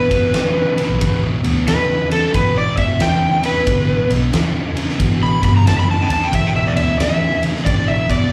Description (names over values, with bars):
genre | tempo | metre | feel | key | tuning
blues rock power trio and southern rock | 90 BPM | 4/4 | swing 65% on 8ths | E minor | A4 = 439 Hz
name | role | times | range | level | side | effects
overdriven slide guitar | melody | 0.0-8.3 s | A4 to B5 | -21 LUFS | equal | slapback echo
fuzz guitar | riff | 0.0-8.3 s | E2 to C#3 | -22 LUFS | equal | distortion, slapback echo
oversized low-tuned drum kit | drums | 0.1-8.2 s | kick drum, ride cymbal, snare drum | -22 LUFS | equal | none
vintage muted fingered electric bass | bass | 0.9-7.3 s | B1 to D3 | -22 LUFS | equal | none
room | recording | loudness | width
light reverb | live gig heard through the venue's PA, club reverb | -16 LUFS | mono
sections
0.0-8.3 A section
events
electric slide guitar solo 0.0-8.3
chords
0.0 E5